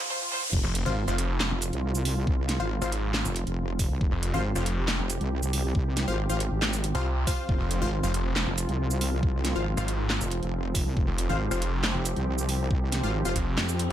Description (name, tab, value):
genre	heavy wobble dubstep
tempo	138 BPM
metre	4/4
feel	half-time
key	F minor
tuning	A4 = 440 Hz
part	supersaw pad	sustained chords	0.0-13.9 s	F3 to G4	-36 LUFS	right 2 dB	sidechain pumping, low-pass filter
part	riser, swell and reverse cymbal	sound effects	0.0-0.5, 13.8-13.9 s	none	-32 LUFS	equal	none
part	dubstep drum kit	drums	0.2-13.9 s	crash cymbal, handclaps, hi-hat, shaker, snare drum, toms	-31 LUFS	right 1 dB	high-pass filter on snare, small room ambience, high-pass filter on hats, high-pass filter on perc, high-pass filter on toms, high-pass filter on cymbals
part	wobble bass	bass	0.5-13.9 s	F1 to F2	-28 LUFS	equal	chorus, overdrive
part	electronic kick drum	drums	0.5-13.4 s	none	-27 LUFS	equal	small room ambience
part	snarling distorted saw bass	bass	0.6-13.6 s	F1 to C2	-28 LUFS	equal	distortion, overdrive
part	supersaw stab	stabs	0.9-13.3 s	F4 to F5	-33 LUFS	left 3 dB	ping-pong delay
room	digital ambience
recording	high-pass filter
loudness	-25 LUFS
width	side -11 dB against mid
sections	0.5-13.9 A section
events	riser 0.0-0.5; swell 0.0-0.5; drum fill 0.2-0.5; drop 0.5-13.9; reverse cymbal 13.8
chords	0.0 N.C.; 0.5 F5